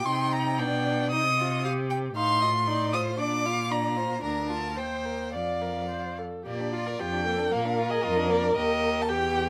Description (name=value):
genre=quick classical-period movement for string quartet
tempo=114 BPM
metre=2/4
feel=rubato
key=Bb major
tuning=A4 = 443 Hz
part: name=warm violin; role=melody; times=0.0-9.5 s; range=D5 to Eb6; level=-31 LUFS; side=equal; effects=none
part: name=clear violin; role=second line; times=0.0-9.5 s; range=Bb3 to G5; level=-36 LUFS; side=equal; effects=none
part: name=rich viola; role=accompaniment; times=0.0-9.5 s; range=D4 to D5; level=-33 LUFS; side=equal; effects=none
part: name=clear cello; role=bass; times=0.0-9.5 s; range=D2 to C3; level=-34 LUFS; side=equal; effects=none
room=light reverb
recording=none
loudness=-27 LUFS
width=mono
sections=0.0-6.5 A section; 6.5-9.5 B section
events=none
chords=0.1 Cm; 0.6 G/B; 1.1 Cm; 2.2 F7/A; 3.2 Bb; 4.2 Bb/D; 4.8 Cm7/Eb; 5.3 Bb/F; 5.9 F; 6.5 Bb; 8.6 Eb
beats=| 0.06 0.59 | 1.11 1.64 | 2.16 2.68 | 3.19 3.71 | 4.23 4.77 | 5.34 5.90 | 6.46 7.00 | 7.52 8.04 | 8.56 9.09